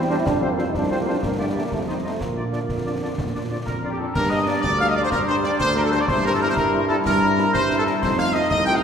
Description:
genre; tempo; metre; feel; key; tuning
military-style march for wind band; 124 BPM (dotted quarters); 6/8; straight; unclear; A4 = 440 Hz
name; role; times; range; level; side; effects
clear euphonium; second line; 0.0-3.7 s; G3 to E4; -26 LUFS; right 1 dB; none
mellow trombone section; sustained chords; 0.0-8.8 s; D3 to E4; -30 LUFS; right 3 dB; none
mellow tuba; bass; 0.0-8.8 s; C2 to Bb2; -25 LUFS; right 1 dB; none
bright trumpet section; melody; 0.1-8.8 s; G4 to G5; -25 LUFS; right 1 dB; none
clear woodwind section; second line; 0.1-8.8 s; F4 to G5; -28 LUFS; equal; none
mellow French horn section; accompaniment; 0.1-8.7 s; F3 to F4; -31 LUFS; left 2 dB; none
concert snare drum, clash cymbals and concert bass drum; drums; 0.3-8.7 s; none; -30 LUFS; left 1 dB; none
glockenspiel with rubber mallets; second line; 3.7-8.8 s; G5 to G6; -26 LUFS; left 4 dB; none
room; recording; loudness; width
wet concert hall reverb, RT60 2.0 s; recorded in a church or concert hall; -19 LUFS; side -7 dB against mid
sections
0.0-4.1 A section; 4.1-8.8 B section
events
none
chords
0.3 F; 1.2 Gm; 1.7 F5; 2.2 Bb; 4.1 Gm; 6.1 C7/G; 8.0 F7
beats
| 0.26 0.75 | 1.23 1.72 | 2.21 2.69 | 3.18 3.66 | 4.15 4.63 | 5.12 5.60 | 6.09 6.57 | 7.06 7.54 | 8.03 8.51

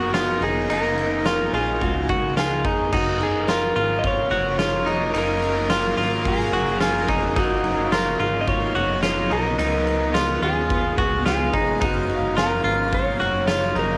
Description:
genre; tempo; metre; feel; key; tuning
dream pop; 108 BPM; 4/4; straight; F# major; A4 = 440 Hz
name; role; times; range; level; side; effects
electric slide guitar; melody; 0.0-14.0 s; F#4 to D#5; -28 LUFS; equal; cassette tape, plate reverb
shimmering ambient pad; sustained chords; 0.0-14.0 s; C#3 to E#5; -30 LUFS; equal; chorus, built-in reverb, plate reverb
direct-recorded clean electric guitar; arpeggios; 0.0-14.0 s; D#4 to F#4; -26 LUFS; equal; subtle chorus, plate reverb, analog delay
chorused synth bass; bass; 0.0-14.0 s; E#1 to D#2; -32 LUFS; equal; none
oversized low-tuned drum kit; drums; 0.1-13.9 s; crash cymbal, kick drum, ride cymbal, snare drum, tambourine; -29 LUFS; equal; none
twinkling granular texture; texture; 1.5-2.0, 13.1-14.0 s; G#5 to A#5; -44 LUFS; equal; none
room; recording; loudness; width
moderate booth ambience, RT60 0.3 s; home recording on cassette; -21 LUFS; mono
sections
0.0-2.9 A section; 2.9-14.0 A section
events
none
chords
0.0 Bmaj9/F#; 0.7 D#m7/F#; 1.8 C#9sus4; 2.9 F#maj7; 7.4 Bmaj9/F#; 9.6 C#7; 11.8 F#maj7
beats
0.15 | 0.70 1.26 1.81 2.37 | 2.92 3.48 4.04 4.59 | 5.15 5.70 6.26 6.81 | 7.37 7.92 8.48 9.04 | 9.59 10.15 10.70 11.26 | 11.81 12.37 12.92 13.48

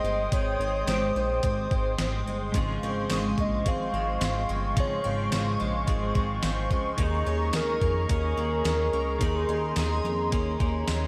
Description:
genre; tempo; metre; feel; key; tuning
dream pop; 108 BPM; 4/4; straight; unclear; A4 = 440 Hz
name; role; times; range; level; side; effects
hollow clarinet-like synth lead; melody; 0.0-10.9 s; Ab4 to F5; -34 LUFS; equal; chorus, tape echo
hollow soft pad; sustained chords; 0.0-11.1 s; Ab3 to Eb6; -34 LUFS; equal; chorus
picked twelve-string acoustic guitar; arpeggios; 0.0-11.1 s; Eb3 to Ab4; -38 LUFS; equal; ensemble chorus, tape echo
chorused synth bass; bass; 0.0-11.1 s; G1 to F2; -33 LUFS; equal; none
gated 80s digital drum machine; drums; 0.3-11.0 s; hi-hat, kick drum, snare drum, tambourine; -32 LUFS; equal; gated reverb, gated reverb snare, overdrive
clean electric guitar; accompaniment; 2.5-11.1 s; Ab2 to Ab4; -38 LUFS; equal; tremolo, lush chorus
room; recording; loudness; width
moderate plate reverb, RT60 2.1 s; dreamy mix soaked in reverb; -27 LUFS; mono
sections
0.0-11.1 A section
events
none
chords
0.0 Abmaj7; 2.5 Dbmaj7; 7.0 Eb7sus4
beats
| 0.32 0.88 1.43 1.99 | 2.55 3.10 3.66 4.21 | 4.77 5.32 5.88 6.43 | 6.99 7.55 8.10 8.66 | 9.21 9.77 10.32 10.88

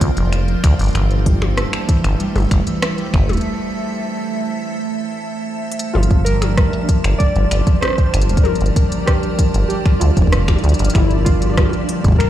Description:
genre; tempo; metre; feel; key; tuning
IDM; 96 BPM; 4/4; straight; G dorian; A4 = 440 Hz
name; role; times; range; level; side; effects
warbly lo-fi synth keys; melody; 0.0-0.6, 5.9-12.3 s; E4 to D5; -24 LUFS; right 1 dB; chorus, dub echo
icy glass pad; sustained chords; 0.0-12.3 s; F3 to A5; -25 LUFS; right 2 dB; chorus, built-in reverb
concert harp; arpeggios; 0.0-12.3 s; E3 to D4; -24 LUFS; equal; dub echo
deep acid bass; bass; 0.0-12.2 s; D1 to D2; -16 LUFS; equal; none
electronic kick drum; drums; 0.0-12.3 s; none; -15 LUFS; equal; none
organic electronic drum kit; drums; 0.0-12.3 s; finger snaps, hi-hat, rim click, toms; -25 LUFS; left 2 dB; none
flickering grainy texture; texture; 6.2-12.3 s; D4 to D5; -30 LUFS; right 1 dB; built-in reverb, sidechain pumping
room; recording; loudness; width
digital ambience; played on a big sound system in a bare room, large studio reverb; -14 LUFS; side -12 dB against mid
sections
0.0-6.0 A section; 6.0-12.3 A section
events
break 3.5-6.0; drum fill 5.6-6.0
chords
0.0 Bb; 0.9 Am7; 6.0 Gm7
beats
0.33 | 0.95 1.57 2.20 2.83 | 3.45 4.08 4.70 5.33 | 5.95 6.58 7.20 7.83 | 8.45 9.07 9.70 10.32 | 10.95 11.57 12.20

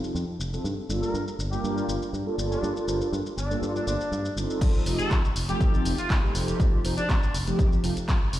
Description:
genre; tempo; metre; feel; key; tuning
filtered disco house; 121 BPM; 4/4; straight; unclear; A4 = 440 Hz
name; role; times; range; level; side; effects
modern bright fingered electric bass; bass; 0.0-8.4 s; F1 to G2; -30 LUFS; equal; sidechain pumping, low-pass filter
punchy analog drum machine; drums; 0.0-8.4 s; crash cymbal, handclaps, hi-hat, shaker; -35 LUFS; equal; sidechain pumping on perc, low-pass filter on perc, sidechain pumping on hats, low-pass filter on hats, sidechain pumping on cymbals, low-pass filter on cymbals, low-pass filter on snare, low-pass filter on room
mellow synth brass; accompaniment; 0.5-7.9 s; F3 to C5; -30 LUFS; right 1 dB; chorus, phaser, sidechain pumping, low-pass filter
clear horn section; melody; 1.0-7.3 s; D4 to Bb4; -34 LUFS; equal; sidechain pumping, low-pass filter, tape echo
electronic kick drum; drums; 4.6-8.2 s; none; -23 LUFS; equal; none
room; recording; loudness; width
light reverb, digital ambience; played on a big sound system in a bare room, large studio reverb; -24 LUFS; side -14 dB against mid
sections
0.0-4.6 A section; 4.6-8.4 B section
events
filter sweep 0.0-4.6; drop 4.6-8.4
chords
0.0 F7; 0.6 Gm7; 4.6 F7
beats
0.15 | 0.65 1.14 1.64 2.13 | 2.63 3.13 3.62 4.12 | 4.61 5.11 5.61 6.10 | 6.60 7.09 7.59 8.08

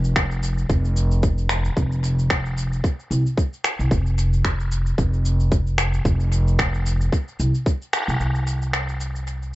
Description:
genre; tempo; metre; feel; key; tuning
organic downtempo; 112 BPM; 4/4; swing 56% on 16ths; unclear; A4 = 440 Hz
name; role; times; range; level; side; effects
upright bass; bass; 0.0-9.6 s; F1 to C2; -20 LUFS; equal; sidechain pumping
electronic shaker and finger snaps; drums; 0.0-9.5 s; none; -26 LUFS; equal; tape echo
electronic kick drum; drums; 0.2-7.8 s; none; -21 LUFS; equal; none
room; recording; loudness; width
light reverb; echo-heavy mix, nothing above 7.8 kHz; -19 LUFS; side -17 dB against mid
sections
0.0-8.2 A section; 8.2-9.6 B section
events
band accent 7.9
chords
none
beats
0.16 0.70 1.23 | 1.77 2.31 2.84 3.38 | 3.91 4.45 4.98 5.52 | 6.06 6.59 7.13 7.66 | 8.20 8.73 9.27

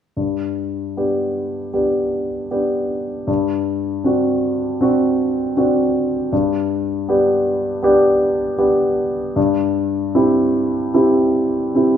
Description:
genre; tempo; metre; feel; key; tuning
classical, romantic character piece for solo piano; 78 BPM; 4/4; rubato; G major; A4 = 440 Hz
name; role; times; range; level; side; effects
warm concert grand piano; solo; 0.2-12.0 s; G2 to G4; -16 LUFS; equal; none
room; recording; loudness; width
moderate stone room reverb, RT60 1.0 s; heard from further back in the room; -16 LUFS; side -9 dB against mid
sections
0.2-12.0 A section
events
none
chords
0.2 G; 3.3 D7/G; 6.3 G; 9.4 C/G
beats
| 0.18 0.97 1.75 2.51 | 3.28 4.05 4.80 5.56 | 6.31 7.07 7.83 8.59 | 9.36 10.15 10.95 11.76

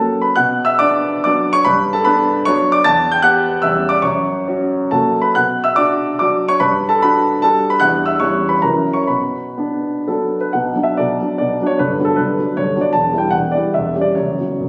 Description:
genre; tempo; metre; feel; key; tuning
classical, romantic triple-time dance for piano with dotted rhythms; 114-168 BPM; 3/4; rubato; B minor; A4 = 441 Hz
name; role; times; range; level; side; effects
warm concert grand piano; solo; 0.0-14.7 s; E1 to A6; -16 LUFS; equal; none
room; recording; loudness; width
wet recital hall reverb, RT60 1.4 s; recorded on a phone in the room, club reverb, compression; -16 LUFS; mono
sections
0.4-10.5 A section; 10.5-14.7 B section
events
none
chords
0.4 Bm; 1.7 Gmaj7; 2.9 Em; 3.6 C#dim/E; 4.0 F#5; 4.9 F#; 5.4 Bm; 6.6 Gmaj7; 7.8 Em7; 8.2 C#dim/E; 8.6 F#7; 9.1 Bm; 11.8 Gmaj7; 12.9 Em; 13.7 C#dim/E; 14.2 F#sus4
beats
| 0.36 0.80 1.24 | 1.66 2.07 2.47 | 2.86 3.24 3.63 | 4.04 4.47 4.92 | 5.36 5.79 6.22 | 6.62 7.02 7.44 | 7.82 8.20 8.63 | 9.08 9.58 10.08 | 10.54 10.97 11.39 | 11.79 12.19 12.58 | 12.94 13.33 13.74 | 14.15 14.61

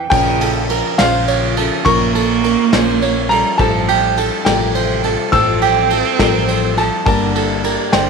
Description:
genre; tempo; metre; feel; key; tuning
indie folk with a building arrangement; 69 BPM (dotted quarters); 6/8; straight; unclear; A4 = 440 Hz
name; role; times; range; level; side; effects
clear upright piano; melody; 0.0-8.1 s; F5 to E6; -19 LUFS; left 1 dB; none
clear cello; second line; 0.0-8.1 s; C3 to C4; -21 LUFS; right 12 dB; none
picked plugged-in steel-string acoustic guitar; accompaniment; 0.1-8.1 s; G2 to Bb4; -21 LUFS; left 13 dB; none
warm concert grand piano; accompaniment; 0.1-8.1 s; G1 to D5; -25 LUFS; left 13 dB; none
tenor ukulele; arpeggios; 0.1-8.1 s; G4 to Db5; -20 LUFS; right 11 dB; none
hollow-body short-scale fingered electric bass; bass; 0.1-8.1 s; G1 to Bb1; -22 LUFS; equal; none
soft brush drum kit; drums; 0.1-8.1 s; crash cymbal, kick drum, ride cymbal, snare drum; -19 LUFS; right 1 dB; none
room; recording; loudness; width
moderate plate reverb, RT60 1.9 s, small room ambience; 1960s-style stereo with parts hard left and right; -12 LUFS; side -5 dB against mid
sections
0.1-8.1 A section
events
none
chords
0.1 Bbm; 3.6 Fadd9/A; 7.1 Gm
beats
| 0.12 0.99 | 1.86 2.73 | 3.60 4.46 | 5.33 6.20 | 7.07 7.93

